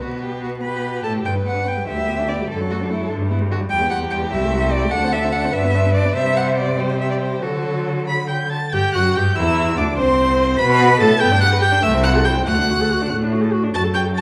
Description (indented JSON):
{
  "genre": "quick classical-period movement for string quartet",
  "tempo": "97 BPM (dotted quarters)",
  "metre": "6/8",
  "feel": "rubato",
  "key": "G major from 3.7 s",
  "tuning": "A4 = 440 Hz",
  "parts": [
    { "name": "rich violin", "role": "melody", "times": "0.0-14.2 s", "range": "A4 to B6", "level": "-25 LUFS", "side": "equal", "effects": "none" },
    { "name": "rich violin", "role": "second line", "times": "0.0-14.2 s", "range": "D4 to B5", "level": "-26 LUFS", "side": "equal", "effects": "none" },
    { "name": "warm viola", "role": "accompaniment", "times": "0.0-14.2 s", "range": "D3 to B4", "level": "-25 LUFS", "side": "equal", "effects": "none" },
    { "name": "warm cello", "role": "bass", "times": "0.0-14.2 s", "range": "C2 to D3", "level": "-23 LUFS", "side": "equal", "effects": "none" }
  ],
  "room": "wet recital hall reverb, RT60 1.4 s",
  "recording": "recorded in a church or concert hall, vinyl crackle",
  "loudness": "-19 LUFS",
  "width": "mono",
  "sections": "0.0-8.7 A section; 8.7-14.2 B section",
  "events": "none",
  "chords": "0.0 Gmaj7/B; 0.6 Gadd9; 1.3 G; 2.5 D/F#; 3.1 G; 3.7 Em; 4.3 Am7/C; 4.9 D5; 5.5 G; 6.2 C5; 7.4 D; 8.7 G5; 10.0 N.C.; 10.6 Asus2; 11.2 G; 11.8 Am/C; 12.5 D",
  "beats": "| 0.02 0.64 | 1.26 1.88 | 2.50 3.11 | 3.71 4.32 | 4.92 5.53 | 6.15 6.78 | 7.43 8.08 | 8.73 9.37 | 9.98 10.59 | 11.21 11.83 | 12.46 13.10 | 13.74"
}